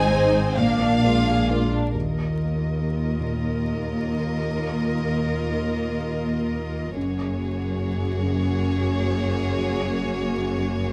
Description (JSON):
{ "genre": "cinematic, emotional film score for orchestra", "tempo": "47 BPM (dotted quarters)", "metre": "6/8", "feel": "uneven beats, rubato", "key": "Eb minor", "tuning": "A4 = 441 Hz", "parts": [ { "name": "warm studio violin section", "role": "melody", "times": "0.0-1.9 s", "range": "F5 to Ab5", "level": "-30 LUFS", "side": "equal", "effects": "none" }, { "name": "warm studio violin section", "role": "second line", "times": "0.0-10.9 s", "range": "Bb3 to F5", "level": "-31 LUFS", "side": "equal", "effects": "none" }, { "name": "felt-muted upright piano", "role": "accompaniment", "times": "0.0-10.9 s", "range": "Eb2 to C5", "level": "-32 LUFS", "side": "equal", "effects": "none" }, { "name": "warm studio viola section", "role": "accompaniment", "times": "0.0-10.9 s", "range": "Bb3 to Gb4", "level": "-32 LUFS", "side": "equal", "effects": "none" }, { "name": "dark studio cello section", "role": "bass", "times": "0.0-10.9 s", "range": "Eb2 to Bb2", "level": "-29 LUFS", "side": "equal", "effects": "none" }, { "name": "dark studio double bass section", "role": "bass", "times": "0.0-10.9 s", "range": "Gb1 to Eb2", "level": "-31 LUFS", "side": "equal", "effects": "none" } ], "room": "moderate recital hall reverb, RT60 1.3 s", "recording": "close, detailed microphones, vinyl crackle", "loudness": "-24 LUFS", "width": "mono", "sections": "0.0-1.9 A section; 1.9-10.9 B section", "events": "none", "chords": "0.0 Ab; 0.6 Bb7; 1.9 Ebsus2; 7.0 Gbadd9", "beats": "0.57 | 1.95 3.21 | 4.46 5.72 | 6.96 8.23 | 9.56" }